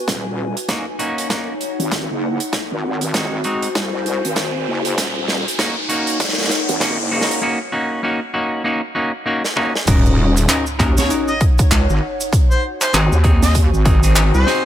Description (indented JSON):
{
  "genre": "glitch hop",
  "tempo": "98 BPM",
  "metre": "4/4",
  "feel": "swing 60% on 16ths",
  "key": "Eb minor pentatonic",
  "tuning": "A4 = 440 Hz",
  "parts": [
    { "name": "semi-hollow electric guitar", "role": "stabs", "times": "0.0-14.7 s", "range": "Ab3 to Bb4", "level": "-22 LUFS", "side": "equal", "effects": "vintage 12-bit sampler grit, sidechain pumping, tape echo" },
    { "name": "warbly tape-like pad", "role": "texture", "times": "0.0-14.7 s", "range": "Eb4 to Ab5", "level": "-26 LUFS", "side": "left 2 dB", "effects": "chorus, built-in reverb, phaser, sidechain pumping" },
    { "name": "wobble bass", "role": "bass", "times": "0.1-14.4 s", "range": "Eb1 to Eb2", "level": "-18 LUFS", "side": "equal", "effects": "chorus, high-pass filter" },
    { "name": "big rock drum kit", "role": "drums", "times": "0.1-14.6 s", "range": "crash cymbal, handclaps, hi-hat, snare drum, toms", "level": "-22 LUFS", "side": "right 1 dB", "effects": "high-pass filter on hats, high-pass filter on snare, high-pass filter on toms, high-pass filter on cymbals, high-pass filter on room" },
    { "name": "electronic kick drum", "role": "drums", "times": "0.1-14.0 s", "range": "none", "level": "-16 LUFS", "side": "equal", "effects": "high-pass filter on kick" },
    { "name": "riser and sub drop", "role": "sound effects", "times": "2.4-12.3 s", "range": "none", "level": "-26 LUFS", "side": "equal", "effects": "none" },
    { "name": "cabasa", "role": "percussion", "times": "9.9-14.4 s", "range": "none", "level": "-28 LUFS", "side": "right 4 dB", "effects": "none" },
    { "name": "warm harmonica", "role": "melody", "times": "11.0-14.7 s", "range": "C5 to Eb5", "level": "-24 LUFS", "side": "equal", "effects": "vintage 12-bit sampler grit, tape echo" }
  ],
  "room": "light reverb",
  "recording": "none",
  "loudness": "-15 LUFS",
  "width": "side -11 dB against mid",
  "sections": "0.1-9.9 A section; 9.9-14.7 B section",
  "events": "build-up 0.1-9.9; drum fill 0.1-7.4, 9.4-9.9; riser 2.4-7.4; drop 9.9-14.7; impact 9.9-12.3",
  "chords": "0.1 Ebm7; 2.5 Ab7; 5.0 Ebm7; 7.4 Gb6/Bb; 9.9 Ebm7; 12.3 Ab7"
}